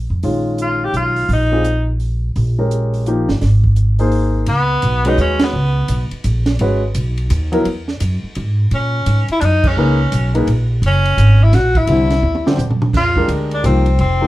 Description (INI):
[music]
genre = modal jazz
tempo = 170 BPM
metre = 3/4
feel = swing 64% on 8ths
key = C# dorian from 4.5 s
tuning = A4 = 439 Hz
[part]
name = upright bass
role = bass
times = 0.0-14.3 s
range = F1 to A#2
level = -15 LUFS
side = equal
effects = none
[part]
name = warm baby grand piano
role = accompaniment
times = 0.2-7.6, 9.8-14.3 s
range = D3 to C5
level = -18 LUFS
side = left 1 dB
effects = none
[part]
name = compact cocktail drum kit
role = drums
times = 0.2-14.1 s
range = crash cymbal, hi-hat, kick drum, ride cymbal, snare drum, toms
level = -22 LUFS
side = right 2 dB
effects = none
[part]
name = clear tenor saxophone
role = melody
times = 0.6-2.0, 4.5-6.1, 8.7-14.3 s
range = B3 to G4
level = -18 LUFS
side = left 1 dB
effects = none
[sound]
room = moderate studio ambience, RT60 0.5 s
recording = heard from further back in the room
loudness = -13 LUFS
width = side -16 dB against mid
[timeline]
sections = 0.0-4.5 A section; 4.5-12.9 B section; 12.9-14.3 C section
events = band accent 5.4, 9.6; drum fill 12.2-12.9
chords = 0.2 Cm/Bb (rootless); 3.4 Ab; 4.5 C#7sus2; 8.7 F#; 11.9 C; 12.9 Fm9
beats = | 0.23 0.58 0.94 | 1.29 1.65 2.00 | 2.35 2.71 3.06 | 3.42 3.77 4.12 | 4.48 4.83 5.19 | 5.54 5.89 6.24 | 6.60 6.95 7.30 | 7.66 8.01 8.36 | 8.71 9.06 9.42 | 9.77 10.12 10.47 | 10.83 11.18 11.53 | 11.88 12.23 12.59 | 12.94 13.29 13.64 | 13.99